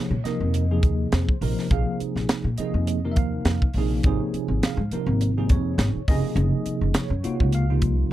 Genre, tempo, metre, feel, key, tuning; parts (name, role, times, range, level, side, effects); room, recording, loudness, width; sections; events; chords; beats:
electric jazz fusion; 103 BPM; 4/4; swing 55% on 16ths; Bb minor; A4 = 440 Hz
bell-like tine electric piano; accompaniment; 0.0-8.1 s; C3 to F5; -26 LUFS; right 2 dB; medium stereo tremolo, lush chorus
upright bass; bass; 0.1-8.1 s; Gb1 to Bb2; -24 LUFS; equal
crisp fusion drum kit; drums; 0.3-8.0 s; hi-hat, kick drum, snare drum; -23 LUFS; equal
little or no reverb; dry, close 1970s-style studio recording; -21 LUFS; side -14 dB against mid
0.0-8.1 A section
0.0 Bb9sus4; 4.0 Db6/Ab; 6.1 Gbmaj7
0.54 1.13 | 1.71 2.30 2.88 3.46 | 4.04 4.63 5.21 5.79 | 6.38 6.96 7.54 8.13